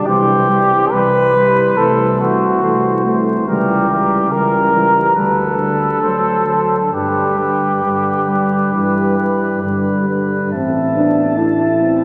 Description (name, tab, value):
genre	classical, brass quintet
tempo	69 BPM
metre	4/4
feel	uneven beats, rubato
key	G major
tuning	A4 = 440 Hz
part	warm trumpet	melody	0.0-12.0 s	A#4 to A5	-26 LUFS	equal	none
part	dark trumpet	second line	0.0-12.0 s	F#4 to E5	-18 LUFS	equal	none
part	dark French horn	accompaniment	0.0-12.0 s	F#3 to E4	-22 LUFS	equal	none
part	mellow trombone	accompaniment	0.0-12.0 s	D3 to C4	-26 LUFS	equal	none
part	mellow tuba	bass	0.1-12.0 s	A1 to G2	-24 LUFS	equal	none
room	wet church reverb, RT60 2.8 s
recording	vinyl crackle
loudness	-15 LUFS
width	mono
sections	0.0-10.5 A section; 10.5-12.0 B section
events	none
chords	0.1 C; 1.8 Am/C; 3.5 C#dim7; 5.2 G/D; 6.0 D7; 6.9 G; 10.5 Am